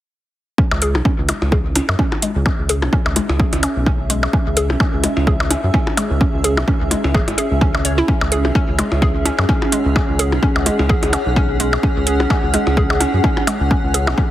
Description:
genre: minimal techno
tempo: 128 BPM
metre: 4/4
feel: swing 56% on 16ths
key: C# minor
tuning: A4 = 441 Hz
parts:
  - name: hollow square pluck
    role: riff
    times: 0.6-14.2 s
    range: G#3 to C#5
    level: -23 LUFS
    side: equal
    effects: chorus, sidechain pumping, tape echo
  - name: electronic kick drum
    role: drums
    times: 0.6-14.3 s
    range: none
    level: -18 LUFS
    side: equal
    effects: overdrive
  - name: granular cloud pad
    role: texture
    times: 2.0-14.3 s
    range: C#4 to F#5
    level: -22 LUFS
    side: equal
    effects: built-in reverb, sidechain pumping
  - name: round analog bass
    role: bass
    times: 0.7-14.1 s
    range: G#1 to F#2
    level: -19 LUFS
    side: equal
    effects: sidechain pumping
  - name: percussion blips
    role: percussion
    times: 0.7-14.2 s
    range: none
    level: -23 LUFS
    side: left 1 dB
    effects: overdrive, dub echo
  - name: electronic hi-hat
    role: drums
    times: 0.8-14.0 s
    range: none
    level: -20 LUFS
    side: right 1 dB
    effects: none
room: light reverb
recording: heavily compressed radio sound, multiband compression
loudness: -14 LUFS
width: side -13 dB against mid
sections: 0.6-14.3 A section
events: none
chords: 0.6 C#m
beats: | 0.58 1.05 1.52 1.99 | 2.46 2.93 3.40 3.87 | 4.33 4.80 5.27 5.74 | 6.21 6.68 7.15 7.62 | 8.08 8.55 9.02 9.49 | 9.96 10.43 10.90 11.37 | 11.83 12.30 12.77 13.24 | 13.71 14.18

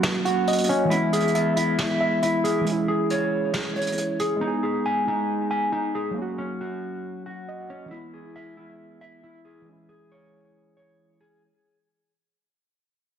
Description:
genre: hip hop, trap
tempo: 137 BPM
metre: 4/4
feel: half-time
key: unclear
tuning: A4 = 440 Hz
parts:
  - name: muted felt-like synth keys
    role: accompaniment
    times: 0.0-11.4 s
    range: E3 to F#5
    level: -26 LUFS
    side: right 1 dB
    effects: chorus
  - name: mellow electric guitar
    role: arpeggios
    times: 0.0-11.4 s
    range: C#4 to G#5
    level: -25 LUFS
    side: equal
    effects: digital delay
  - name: vintage brush drum kit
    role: drums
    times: 0.0-4.3 s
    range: hi-hat, snare drum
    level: -29 LUFS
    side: right 1 dB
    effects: none
room: moderate lush hall reverb, RT60 1.7 s, small room reverb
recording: heavily compressed radio sound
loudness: -22 LUFS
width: side -8 dB against mid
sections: 0.0-11.4 A section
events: break 0.0-4.4; fade-out 0.0-11.4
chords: 0.0 F#; 0.9 E; 2.7 C#m; 4.4 G#m; 6.2 F#; 7.9 E; 9.7 C#m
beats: 0.03 0.47 | 0.91 1.35 1.79 2.22 | 2.66 3.10 3.54 3.98 | 4.41 4.85 5.29 5.73 | 6.17 6.60 7.04 7.48 | 7.92 8.36 8.79 9.23 | 9.67 10.11 10.54 10.98

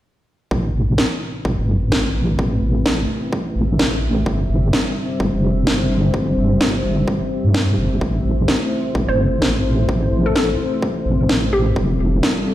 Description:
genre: bass house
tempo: 128 BPM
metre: 4/4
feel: swing 58% on 16ths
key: A minor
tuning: A4 = 441 Hz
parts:
  - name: dark analog pad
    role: sustained chords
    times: 0.5-12.5 s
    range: G3 to C5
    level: -24 LUFS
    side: left 1 dB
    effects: chorus, sidechain pumping
  - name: wobble bass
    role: bass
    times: 0.5-12.2 s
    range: F1 to G2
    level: -18 LUFS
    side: equal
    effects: chorus, tube saturation, sidechain pumping
  - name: electronic kick drum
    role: drums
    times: 0.5-12.3 s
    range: none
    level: -25 LUFS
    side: equal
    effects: high-pass filter on kick
  - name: warbly tape-like pad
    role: texture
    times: 1.8-12.5 s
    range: C4 to G5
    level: -32 LUFS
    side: right 1 dB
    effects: chorus, built-in reverb, sidechain pumping
  - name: electronic snare drum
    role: drums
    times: 1.0-12.3 s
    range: none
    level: -21 LUFS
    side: equal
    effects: none
  - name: hollow square pluck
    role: melody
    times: 9.1-11.8 s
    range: G4 to C5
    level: -24 LUFS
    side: equal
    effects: chorus, ping-pong delay
room: light reverb, digital ambience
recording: played on a big sound system in a bare room, stone room reverb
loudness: -16 LUFS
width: side -13 dB against mid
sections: 0.5-12.5 A section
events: fade-in on ambient pad 0.5-12.5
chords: 0.5 Amadd9; 4.3 Gsus4; 8.0 Am; 11.8 Fadd9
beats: | 0.51 0.98 1.45 1.92 | 2.39 2.86 3.33 3.79 | 4.26 4.73 5.20 5.67 | 6.14 6.61 7.08 7.54 | 8.01 8.48 8.95 9.42 | 9.89 10.36 10.82 11.29 | 11.76 12.23

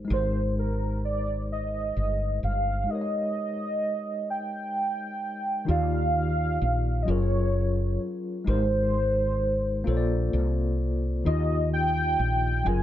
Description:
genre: slow six-eight R&B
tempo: 43 BPM (dotted quarters)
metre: 6/8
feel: straight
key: Eb major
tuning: A4 = 440 Hz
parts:
  - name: tine electric piano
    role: accompaniment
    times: 0.0-12.8 s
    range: Eb3 to Eb5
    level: -31 LUFS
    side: left 2 dB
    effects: medium tremolo
  - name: woody fretless electric bass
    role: bass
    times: 0.0-12.8 s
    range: Gb1 to Eb2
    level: -26 LUFS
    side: equal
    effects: ensemble chorus
  - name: warm velvety synth lead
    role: melody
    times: 0.1-12.8 s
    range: Bb4 to Ab5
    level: -28 LUFS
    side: right 1 dB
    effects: chorus
room: light reverb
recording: none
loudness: -24 LUFS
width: side -12 dB against mid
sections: 0.0-5.7 A section; 5.7-12.8 B section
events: break 2.9-5.7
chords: 0.0 Abmaj9; 5.7 Ebmaj9; 7.1 Gbmaj9; 8.5 Abmaj9; 9.9 Bbmaj9; 11.3 Ebadd9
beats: | 0.10 1.49 | 2.89 4.28 | 5.68 7.07 | 8.47 9.86 | 11.26 12.65

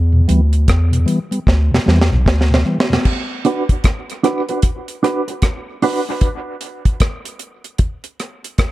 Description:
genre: dub reggae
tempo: 76 BPM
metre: 4/4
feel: swing 62% on 16ths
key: B minor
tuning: A4 = 442 Hz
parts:
  - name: soft dub sub bass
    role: bass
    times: 0.0-2.6 s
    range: B1 to E2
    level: -13 LUFS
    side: equal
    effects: none
  - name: mellow tonewheel organ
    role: accompaniment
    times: 0.1-3.0 s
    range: E2 to B3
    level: -19 LUFS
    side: left 1 dB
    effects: slow rotary speaker
  - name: deep reggae drum kit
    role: drums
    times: 0.3-8.7 s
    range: crash cymbal, hi-hat, kick drum, rim click, snare drum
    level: -16 LUFS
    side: equal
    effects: none
  - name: mellow electric guitar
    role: accompaniment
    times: 3.4-6.0 s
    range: D4 to B4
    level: -19 LUFS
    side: right 3 dB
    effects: tremolo, low-pass filter, tape echo
room: light reverb, small room ambience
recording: none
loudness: -14 LUFS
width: side -16 dB against mid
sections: 0.0-3.1 A section; 3.1-8.7 B section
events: break 0.0-3.1, 6.2-8.7; drum fill 1.5-3.1; filter sweep on clean electric guitar 3.1-8.7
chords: 0.0 Em; 3.1 Bm; 6.2 N.C.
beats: 0.68 1.47 2.26 | 3.05 3.84 4.63 5.42 | 6.21 7.01 7.80 8.59

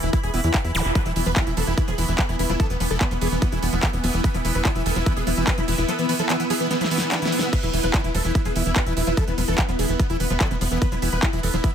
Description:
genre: psychedelic trance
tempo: 146 BPM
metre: 4/4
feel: straight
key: unclear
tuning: A4 = 440 Hz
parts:
  - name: dense compressed supersaw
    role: melody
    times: 0.0-11.7 s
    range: B3 to B4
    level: -28 LUFS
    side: equal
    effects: phaser, sidechain pumping, dub echo
  - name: pulsing gated texture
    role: sustained chords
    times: 0.0-11.7 s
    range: E3 to E4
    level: -31 LUFS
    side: right 2 dB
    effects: chorus, built-in reverb, sidechain pumping
  - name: liquid acid bass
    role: riff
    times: 0.0-11.7 s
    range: E3 to B3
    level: -30 LUFS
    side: moving between left 4 dB and right 6 dB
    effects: chorus, auto-pan, sidechain pumping, dub echo
  - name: tight sequencer bass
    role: bass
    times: 0.0-11.6 s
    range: D1 to E2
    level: -25 LUFS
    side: equal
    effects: none
  - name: big-room dance drum kit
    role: drums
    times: 0.0-11.7 s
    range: crash cymbal, handclaps, hi-hat, ride cymbal, snare drum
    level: -28 LUFS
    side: right 1 dB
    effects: none
  - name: granular cloud pad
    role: texture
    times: 0.0-11.7 s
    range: E4 to E6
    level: -30 LUFS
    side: left 1 dB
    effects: built-in reverb, sidechain pumping
  - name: electronic kick drum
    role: drums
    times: 0.1-11.7 s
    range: none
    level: -23 LUFS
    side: equal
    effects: none
  - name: zap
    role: sound effects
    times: 0.7-0.9 s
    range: none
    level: -28 LUFS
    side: equal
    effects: none
room: little or no reverb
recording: none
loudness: -19 LUFS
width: side -8 dB against mid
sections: 0.0-11.7 A section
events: drum fill 6.7-7.5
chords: 0.0 E5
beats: 0.13 0.54 | 0.95 1.36 1.77 2.19 | 2.60 3.01 3.42 3.83 | 4.24 4.65 5.06 5.47 | 5.88 6.30 6.71 7.12 | 7.53 7.94 8.35 8.76 | 9.17 9.58 9.99 10.40 | 10.82 11.23 11.64

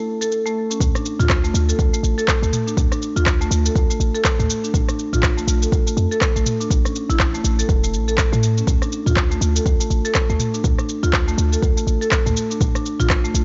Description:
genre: afro house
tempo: 122 BPM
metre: 4/4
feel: swing 59% on 16ths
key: D minor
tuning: A4 = 444 Hz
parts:
  - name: marimba with medium mallets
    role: arpeggios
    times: 0.0-13.3 s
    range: A3 to A4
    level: -26 LUFS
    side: equal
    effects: sidechain pumping, analog delay
  - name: afro-pop drum kit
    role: drums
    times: 0.2-13.4 s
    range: handclaps, rim click, shaker, toms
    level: -26 LUFS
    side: equal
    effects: none
  - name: warm 808-style bass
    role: bass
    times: 0.8-13.4 s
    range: E1 to A2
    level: -23 LUFS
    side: equal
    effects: sidechain pumping
  - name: electronic kick drum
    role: drums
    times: 0.8-13.2 s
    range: none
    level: -22 LUFS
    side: equal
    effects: none
room: little or no reverb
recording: dry, gritty hardware recording, cassette tape, nothing above 7.7 kHz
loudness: -19 LUFS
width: mono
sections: 0.8-13.4 A section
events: drop 0.8-13.4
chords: 0.0 A; 0.8 D5; 4.7 Bbmaj7(no3); 6.7 A5; 8.7 D5; 12.6 N.C.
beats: 0.31 | 0.81 1.30 1.79 2.28 | 2.77 3.26 3.75 4.25 | 4.74 5.23 5.72 6.21 | 6.71 7.20 7.69 8.18 | 8.67 9.16 9.66 10.15 | 10.64 11.13 11.62 12.12 | 12.61 13.10

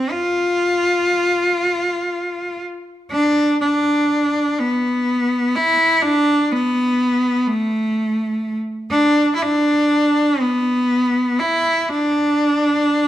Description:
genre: celtic folk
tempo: 41 BPM (dotted quarters)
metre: 6/8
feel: rubato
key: D dorian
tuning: A4 = 439 Hz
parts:
  - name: clear cello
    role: solo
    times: 0.0-13.1 s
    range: A3 to F4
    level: -16 LUFS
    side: equal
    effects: none
room: moderate recital hall reverb, RT60 1.3 s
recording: none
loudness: -16 LUFS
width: side -12 dB against mid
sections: 0.0-3.1 A section; 3.1-13.1 B section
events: none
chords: none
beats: | 0.10 1.58 | 3.11 4.61 | 6.06 7.49 | 8.93 10.40 | 11.88

